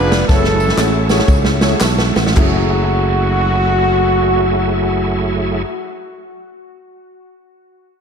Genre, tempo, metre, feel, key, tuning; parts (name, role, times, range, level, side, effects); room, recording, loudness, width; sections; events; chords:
uptempo gospel; 104-130 BPM; 4/4; swing 64% on 8ths; F# minor; A4 = 440 Hz
clear horn section; melody; 0.0-5.6 s; B3 to B4; -19 LUFS; equal; analog delay
warm grand piano; accompaniment; 0.0-5.7 s; F#2 to C#6; -22 LUFS; left 2 dB; analog chorus
bright tonewheel organ; sustained chords; 0.0-5.6 s; F#3 to E#5; -22 LUFS; right 3 dB; fast rotary speaker, overdrive, chorus vibrato
fingered electric bass; bass; 0.0-5.6 s; E#1 to C#2; -18 LUFS; equal
swinging big-band drum kit; drums; 0.1-2.5 s; crash cymbal, hi-hat, kick drum, snare drum; -16 LUFS; right 1 dB
tambourine and handclaps; percussion; 0.1-2.7 s; -29 LUFS; left 1 dB
wet lush hall reverb, RT60 2.0 s; dreamy mix soaked in reverb; -12 LUFS; side -6 dB against mid
0.0-2.4 A section; 2.4-7.0 B section
slowing down 0.0-2.4; drum fill 0.3-2.4
0.3 F#m9